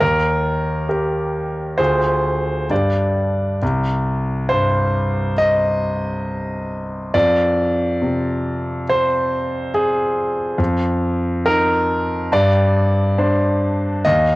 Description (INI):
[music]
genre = classical, contemporary piece for solo grand piano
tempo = 69 BPM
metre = 4/4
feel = rubato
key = C minor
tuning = A4 = 440 Hz
[part]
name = clear grand piano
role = solo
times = 0.0-14.4 s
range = C2 to Eb5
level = -16 LUFS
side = equal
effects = none
[sound]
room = light reverb, small room ambience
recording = home recording on cassette, nothing above 11.0 kHz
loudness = -16 LUFS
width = side -19 dB against mid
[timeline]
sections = 0.0-3.6 A section; 3.6-14.4 A section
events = none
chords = 0.0 Eb; 1.8 Ddim; 2.7 G5; 3.6 Cm; 7.1 Fm; 10.6 Bbsus4/F; 12.3 Gsus4